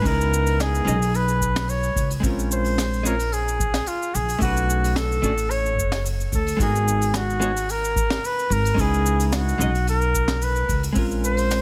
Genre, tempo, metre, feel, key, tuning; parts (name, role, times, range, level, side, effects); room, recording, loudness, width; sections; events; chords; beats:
sunset chillout; 110 BPM; 4/4; straight; A4 = 439 Hz
warm flugelhorn; melody; 0.0-11.6 s; E#4 to C#5; -27 LUFS; equal; tape echo
vintage hollow-body jazz guitar; accompaniment; 0.0-11.6 s; G#3 to D#5; -29 LUFS; equal; vintage 12-bit sampler grit
upright bass; bass; 0.0-11.6 s; F#1 to D2; -26 LUFS; equal
electronic kick drum; drums; 0.0-11.1 s; -28 LUFS; equal
jazz brush drum kit; drums; 0.1-11.6 s; cabasa, hi-hat, snare drum; -32 LUFS; equal
light reverb, small room ambience; -22 LUFS; mono
0.0-11.6 A section
0.1 C#m9; 2.2 A#m9; 4.4 Bm9; 6.6 G#m9; 8.8 C#m9; 11.0 A#m9
| 0.05 0.60 1.14 1.69 | 2.23 2.78 3.32 3.87 | 4.41 4.96 5.50 6.05 | 6.60 7.14 7.69 8.23 | 8.78 9.32 9.87 10.41 | 10.96 11.51